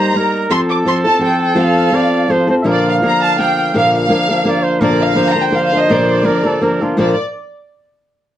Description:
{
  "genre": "mexican folk, mariachi",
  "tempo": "168 BPM",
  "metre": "3/4",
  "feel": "swing 54% on 8ths",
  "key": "Bb major",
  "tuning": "A4 = 438 Hz",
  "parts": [
    { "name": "warm studio violin section", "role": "melody", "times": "0.0-7.2 s", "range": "D5 to D6", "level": "-17 LUFS", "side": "equal", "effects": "plate reverb" },
    { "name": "warm trumpet", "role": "second line", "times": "0.0-7.2 s", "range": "F4 to F5", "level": "-18 LUFS", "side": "right 4 dB", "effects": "none" },
    { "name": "flamenco guitar", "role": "accompaniment", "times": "0.0-7.1 s", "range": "Bb2 to Bb4", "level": "-14 LUFS", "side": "left 1 dB", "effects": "none" }
  ],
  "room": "moderate small room ambience, RT60 0.5 s",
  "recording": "worn, warbling old tape, cassette tape, warbly pitch drift",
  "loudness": "-12 LUFS",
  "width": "side -11 dB against mid",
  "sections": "0.0-7.0 A section; 7.0-8.1 B section",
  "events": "none",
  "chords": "0.0 Eb; 0.5 F; 2.7 Bb"
}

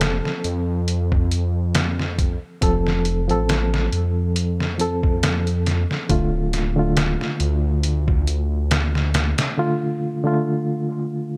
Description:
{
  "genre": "trip hop",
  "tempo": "69 BPM",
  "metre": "4/4",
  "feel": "swing 55% on 16ths",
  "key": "unclear",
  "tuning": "A4 = 440 Hz",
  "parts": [
    { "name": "reed electric piano", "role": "accompaniment", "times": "0.0-11.4 s", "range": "D3 to A4", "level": "-26 LUFS", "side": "equal", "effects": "tremolo, low-pass filter, tape echo" },
    { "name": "dark detuned saw bass", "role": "bass", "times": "0.0-9.3 s", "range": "D1 to F2", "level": "-24 LUFS", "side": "equal", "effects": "none" },
    { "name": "trip hop sampler-style drum kit", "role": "drums", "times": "0.0-9.6 s", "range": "hi-hat, kick drum, snare drum", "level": "-24 LUFS", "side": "equal", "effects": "none" }
  ],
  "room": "little or no reverb",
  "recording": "none",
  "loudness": "-21 LUFS",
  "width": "mono",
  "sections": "0.0-11.4 A section",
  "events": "break 9.6-11.4",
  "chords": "0.0 F; 6.1 Dm"
}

